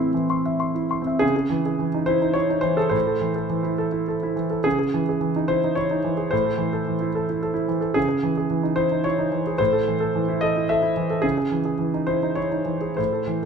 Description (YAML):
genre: neoclassical minimalist piano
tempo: 96-112 BPM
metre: 3/4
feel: rubato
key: C# harmonic minor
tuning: A4 = 440 Hz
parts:
  - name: warm concert grand piano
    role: solo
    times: 0.0-13.5 s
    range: A2 to C6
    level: -20 LUFS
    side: right 1 dB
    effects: none
room: moderate recital hall reverb, RT60 1.3 s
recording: minimal, uncompressed stereo recording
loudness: -20 LUFS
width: side -6 dB against mid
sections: 0.0-1.2 A section; 1.2-13.5 B section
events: none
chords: 0.0 Am; 1.2 C#madd9; 2.9 Am; 4.7 C#madd9; 6.3 Am; 8.0 C#madd9; 9.6 Am; 11.2 C#madd9